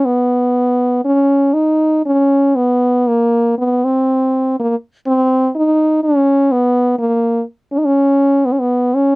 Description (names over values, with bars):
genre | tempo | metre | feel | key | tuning
fado | 60 BPM | 2/4 | rubato | B major | A4 = 441 Hz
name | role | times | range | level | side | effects
warm French horn | solo | 0.0-9.2 s | A#3 to D#4 | -12 LUFS | equal | none
room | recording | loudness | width
moderate booth ambience, RT60 0.2 s | dry, close 1970s-style studio recording | -12 LUFS | side -27 dB against mid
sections
0.0-2.0 A section; 2.0-9.2 B section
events
none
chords
none